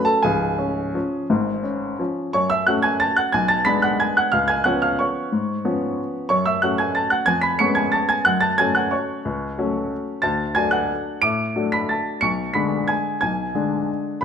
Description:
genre	classical, piano waltz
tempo	168-193 BPM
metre	3/4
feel	rubato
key	F# minor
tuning	A4 = 441 Hz
part	warm upright piano	solo	0.0-14.2 s	C#1 to D7	-18 LUFS	equal	none
room	light reverb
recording	close, detailed microphones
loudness	-19 LUFS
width	side -7 dB against mid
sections	0.0-2.3 A section; 2.3-14.2 B section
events	none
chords	0.3 C#; 2.3 F#m; 3.3 G#dim/B; 4.3 C#7; 6.3 F#m; 7.3 C#7/E#; 8.3 F#m; 10.2 D; 12.2 G#dim/B

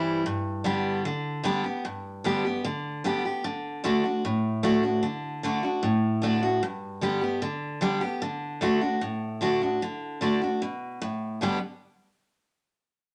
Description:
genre	rock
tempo	151 BPM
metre	4/4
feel	straight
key	G major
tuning	A4 = 440 Hz
part	picked steel-string acoustic guitar	solo	0.0-11.6 s	G2 to G4	-28 LUFS	equal	none
room	light reverb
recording	none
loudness	-28 LUFS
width	mono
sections	0.0-9.8 A section; 9.8-11.4 B section; 11.4-13.0 C section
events	none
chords	0.3 G; 3.4 D; 6.6 G; 8.2 D; 11.4 G

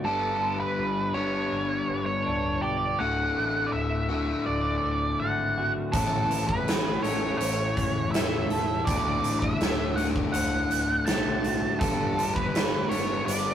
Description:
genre	quiet-loud alternative rock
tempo	82 BPM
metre	4/4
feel	straight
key	D major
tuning	A4 = 439 Hz
part	octave-fuzz lead guitar	melody	0.0-13.5 s	A4 to A5	-29 LUFS	right 2 dB	distortion, analog delay
part	electric guitar through a small old amp	arpeggios	0.0-13.5 s	D2 to A4	-34 LUFS	right 2 dB	none
part	overdriven semi-hollow guitar	riff	0.0-13.5 s	D2 to A4	-30 LUFS	left 4 dB	none
part	growling fingered electric bass	bass	0.0-13.5 s	D1 to B1	-35 LUFS	equal	overdrive
part	big rock drum kit	drums	5.9-13.5 s	hi-hat, kick drum, snare drum	-28 LUFS	right 1 dB	none
room	moderate studio reverb, RT60 0.6 s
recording	rough rehearsal-room recording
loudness	-24 LUFS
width	side -10 dB against mid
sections	0.0-13.5 A section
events	none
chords	0.1 G; 3.0 D; 5.9 A; 8.9 D; 11.8 G

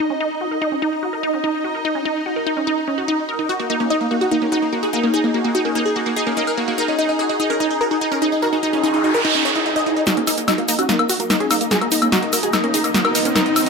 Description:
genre	psychedelic trance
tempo	146 BPM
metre	4/4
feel	straight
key	Eb minor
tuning	A4 = 441 Hz
part	evolving wavetable pad	sustained chords	0.0-13.7 s	Eb4 to Eb5	-24 LUFS	left 1 dB	phaser, built-in reverb
part	wide unison pluck	riff	0.0-13.7 s	Db4 to Eb5	-21 LUFS	right 1 dB	auto-pan, dub echo
part	supersaw stab	melody	3.5-13.7 s	Bb3 to Eb5	-20 LUFS	equal	phaser, low-pass filter, dub echo
part	noise sweep and riser	sound effects	8.7-13.7 s	none	-24 LUFS	right 2 dB	none
part	techno drum kit	drums	10.1-13.7 s	hi-hat, snare drum, woodblock	-19 LUFS	left 1 dB	low-pass filter on hats, low-pass filter on perc, low-pass filter on snare, low-pass filter on room
part	egg shaker	percussion	10.1-13.7 s	none	-28 LUFS	left 4 dB	none
room	moderate lush hall reverb, RT60 2.1 s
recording	none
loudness	-16 LUFS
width	side -4 dB against mid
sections	0.0-10.1 A section; 10.1-13.7 B section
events	noise sweep 8.7-10.1; build-up 10.1-13.7; drum fill 10.1-13.7; riser 10.1-13.7; filter sweep on supersaw synth 10.1-13.7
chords	0.0 Eb5

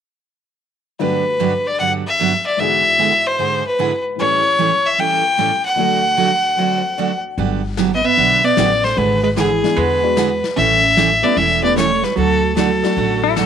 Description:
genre	country, western swing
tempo	150 BPM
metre	4/4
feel	swing 67% on 8ths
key	G major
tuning	A4 = 444 Hz
part	clear fiddle	melody	1.0-13.5 s	G#4 to G5	-15 LUFS	left 2 dB	none
part	dark upright piano	accompaniment	1.0-13.0 s	D2 to F#5	-26 LUFS	left 13 dB	none
part	picked steel-string acoustic guitar	accompaniment	1.0-13.5 s	G2 to A4	-22 LUFS	right 9 dB	none
part	upright bass	bass	7.4-13.5 s	E1 to E2	-23 LUFS	left 2 dB	none
part	vintage brush drum kit	drums	7.4-13.5 s	brushed snare drum, hi-hat, snare drum	-26 LUFS	left 9 dB	none
part	hollow-body jazz guitar	second line	8.0-13.5 s	E3 to C#4	-21 LUFS	right 10 dB	none
part	pedal steel guitar	second line	13.2-13.5 s	E4 to A4	-16 LUFS	left 13 dB	none
room	light reverb, small room ambience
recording	1960s-style stereo with parts hard left and right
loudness	-14 LUFS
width	side -8 dB against mid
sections	1.0-7.4 A section; 7.4-13.5 B section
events	none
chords	1.0 Gmaj7; 2.6 E7/G#; 4.2 A7; 5.8 D; 7.4 Gmaj7; 9.0 E7/G#; 10.6 A7; 12.2 D

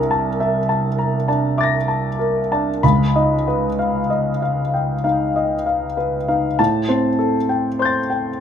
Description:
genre	classical, impressionist solo piano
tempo	47-52 BPM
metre	3/4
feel	rubato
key	unclear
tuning	A4 = 439 Hz
part	warm concert grand piano	solo	0.0-8.4 s	C2 to Bb6	-16 LUFS	left 1 dB	none
room	moderate studio reverb, RT60 0.8 s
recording	faint mains hum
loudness	-16 LUFS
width	side -8 dB against mid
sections	0.0-8.4 A section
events	none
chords	0.0 C13; 2.8 Db9; 6.6 Am7

